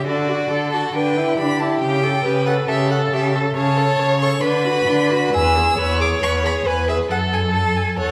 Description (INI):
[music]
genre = quick classical-period movement for string quartet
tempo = 137 BPM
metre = 4/4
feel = rubato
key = unclear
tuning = A4 = 440 Hz
[part]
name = rich violin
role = melody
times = 0.0-8.1 s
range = D5 to E6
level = -26 LUFS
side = equal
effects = none
[part]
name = rich violin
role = second line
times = 0.0-8.1 s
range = F#4 to C#5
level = -24 LUFS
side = equal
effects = none
[part]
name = clear viola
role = accompaniment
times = 0.0-8.1 s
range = D4 to C#5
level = -25 LUFS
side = equal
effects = none
[part]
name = warm cello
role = bass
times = 0.1-8.1 s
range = E2 to D3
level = -24 LUFS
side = equal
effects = none
[sound]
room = wet recital hall reverb, RT60 1.7 s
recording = none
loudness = -19 LUFS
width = mono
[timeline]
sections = 0.0-8.1 A section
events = none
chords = 0.1 D; 0.9 Em7/D; 1.8 A7/C#; 3.6 A/C#; 4.4 Bm/D; 5.3 E; 7.1 F#madd9